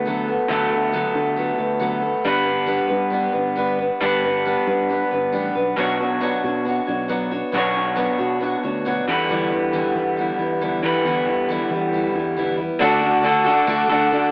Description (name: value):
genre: rock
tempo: 136 BPM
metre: 4/4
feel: straight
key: D major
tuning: A4 = 440 Hz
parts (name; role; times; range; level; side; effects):
- picked steel-string acoustic guitar; accompaniment; 0.0-14.3 s; B2 to C#5; -23 LUFS; equal; cassette tape
- electric guitar through a small old amp; riff; 0.0-14.3 s; B2 to C#5; -20 LUFS; equal; cassette tape
- fingered electric bass; bass; 0.0-14.3 s; G1 to E3; -29 LUFS; equal; none
- warm upright piano; accompaniment; 12.8-14.3 s; F#4 to F#5; -27 LUFS; equal; cassette tape
- tonewheel organ; sustained chords; 12.8-14.3 s; A4 to D6; -26 LUFS; equal; chorus vibrato, slow rotary speaker, cassette tape
room: light reverb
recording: home recording on cassette, AM radio sound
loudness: -18 LUFS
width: side -32 dB against mid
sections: 0.0-12.8 A section; 12.8-14.3 B section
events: none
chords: 0.0 D6; 2.3 G; 5.8 Bmadd9; 9.1 Em7; 12.8 D